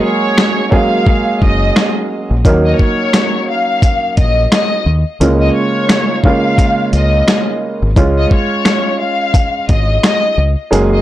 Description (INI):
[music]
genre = hip hop, boom-bap hip-hop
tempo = 87 BPM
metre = 4/4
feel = swing 60% on 16ths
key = unclear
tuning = A4 = 440 Hz
[part]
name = warm symphonic violin section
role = melody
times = 0.0-11.0 s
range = Db5 to F5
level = -17 LUFS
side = left 2 dB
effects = high-pass filter, low-pass filter
[part]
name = dark upright piano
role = accompaniment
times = 0.0-11.0 s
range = Db3 to Bb4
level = -16 LUFS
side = right 2 dB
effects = cassette tape, high-pass filter, low-pass filter, plate reverb
[part]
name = dusty soul sampler-style drum kit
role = drums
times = 0.4-10.9 s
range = hi-hat, kick drum, rim click, snare drum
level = -13 LUFS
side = equal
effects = none
[part]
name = deep dub fingered electric bass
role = bass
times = 1.4-11.0 s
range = Gb1 to Eb2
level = -14 LUFS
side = equal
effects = transformer saturation
[sound]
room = light reverb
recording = blown-out, overdriven recording, overdrive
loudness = -10 LUFS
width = side -14 dB against mid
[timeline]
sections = 0.0-11.0 A section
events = break 0.0-2.4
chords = 0.0 Gbadd9; 2.4 Ebm7; 5.2 Bbm7/Db; 8.0 Db